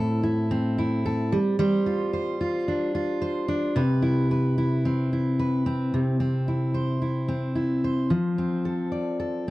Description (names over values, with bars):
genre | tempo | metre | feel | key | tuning
pop | 111 BPM | 4/4 | straight | C major | A4 = 442 Hz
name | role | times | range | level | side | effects
fingerpicked steel-string acoustic guitar | solo | 0.0-9.5 s | A2 to D5 | -23 LUFS | equal | none
room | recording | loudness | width
light reverb | dry, close 1970s-style studio recording | -23 LUFS | side -18 dB against mid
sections
0.0-5.9 A section; 5.9-9.5 B section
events
none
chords
0.0 Am; 1.3 G7sus4; 3.8 Cmaj7; 5.9 C; 8.1 F6